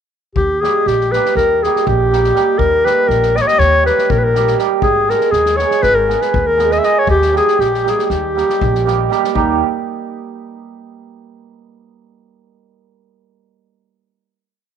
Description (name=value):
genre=balkan folk, Balkan wedding band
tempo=240 BPM (eighths)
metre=9/8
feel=straight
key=unclear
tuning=A4 = 439 Hz
part: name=warm clarinet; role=melody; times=0.4-9.6 s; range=Eb4 to Fb5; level=-14 LUFS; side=left 2 dB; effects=none
part: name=upright bass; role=bass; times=0.4-9.6 s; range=Ab1 to Eb2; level=-20 LUFS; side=left 2 dB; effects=none
part: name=unplugged drum kit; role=percussion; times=0.4-9.6 s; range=kick drum, snare drum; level=-25 LUFS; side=left 4 dB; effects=none
part: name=cimbalom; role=accompaniment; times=0.6-9.6 s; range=G3 to Ab4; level=-18 LUFS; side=right 13 dB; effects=none
room=moderate spring reverb, RT60 2.5 s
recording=1960s-style stereo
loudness=-12 LUFS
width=side -8 dB against mid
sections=0.4-9.4 A section; 9.4-11.7 final chord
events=none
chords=0.4 Eb; 4.8 Abm; 7.1 Eb